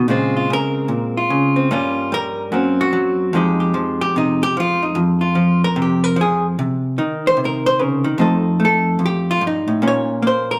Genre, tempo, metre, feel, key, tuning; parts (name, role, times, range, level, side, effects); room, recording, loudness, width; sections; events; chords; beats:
solo jazz; 148 BPM; 4/4; swing 64% on 8ths; F minor; A4 = 440 Hz
vintage hollow-body jazz guitar; solo; 0.0-10.6 s; F2 to Db5; -18 LUFS; equal
wet large studio reverb, RT60 1.2 s; band playing live in one room; -18 LUFS; mono
0.0-6.6 A section; 6.6-10.6 A section
hollow-body jazz guitar solo 0.0-10.6
0.1 Bbm9; 1.7 Gm7b5; 2.5 Gb; 3.3 Fm9; 6.6 Cm; 8.2 F7; 9.8 Bbm
| 0.09 0.50 0.90 1.31 | 1.71 2.12 2.52 2.93 | 3.33 3.74 4.14 4.55 | 4.95 5.36 5.76 6.17 | 6.57 6.98 7.38 7.79 | 8.19 8.60 9.00 9.40 | 9.81 10.21